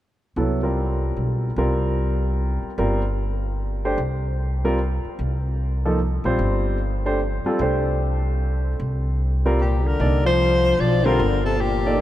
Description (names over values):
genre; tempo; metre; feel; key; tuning
modal jazz; 150 BPM; 3/4; swing 64% on 8ths; unclear; A4 = 439 Hz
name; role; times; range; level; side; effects
clear concert grand piano; accompaniment; 0.4-12.0 s; F3 to D5; -24 LUFS; equal; none
upright bass; bass; 0.4-12.0 s; G1 to C2; -22 LUFS; equal; none
mellow soprano saxophone; melody; 9.6-12.0 s; G4 to D5; -22 LUFS; left 1 dB; none
warm trombone; second line; 9.6-12.0 s; Bb2 to F3; -23 LUFS; left 3 dB; none
room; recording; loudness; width
moderate cathedral reverb, RT60 6.5 s; in a vast, echoing space; -19 LUFS; side -13 dB against mid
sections
0.4-10.0 A section; 10.0-12.0 B section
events
none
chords
0.4 C9sus4